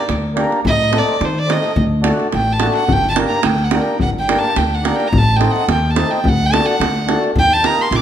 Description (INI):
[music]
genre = balkan folk, Balkan wedding band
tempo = 107 BPM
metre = 2/4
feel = straight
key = G harmonic minor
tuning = A4 = 440 Hz
[part]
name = warm fiddle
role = melody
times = 0.0-8.0 s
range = C5 to D6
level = -18 LUFS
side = right 1 dB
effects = none
[part]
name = mellow accordion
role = accompaniment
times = 0.0-7.9 s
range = A3 to Bb4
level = -21 LUFS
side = left 2 dB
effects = none
[part]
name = upright bass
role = bass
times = 0.1-8.0 s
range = G1 to Eb3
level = -19 LUFS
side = equal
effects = none
[part]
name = davul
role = percussion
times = 0.1-8.0 s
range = none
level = -19 LUFS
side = right 2 dB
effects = none
[sound]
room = moderate recital hall reverb, RT60 1.4 s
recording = none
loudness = -13 LUFS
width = side -10 dB against mid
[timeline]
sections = 0.0-8.0 A section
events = fiddle solo 0.0-8.0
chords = 0.0 Gm; 0.7 Adim; 1.8 D; 2.9 Gm; 5.1 Adim; 6.2 D; 7.4 Eb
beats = 0.09 | 0.65 1.21 | 1.77 2.33 | 2.89 3.45 | 4.01 4.57 | 5.12 5.68 | 6.24 6.80 | 7.36 7.92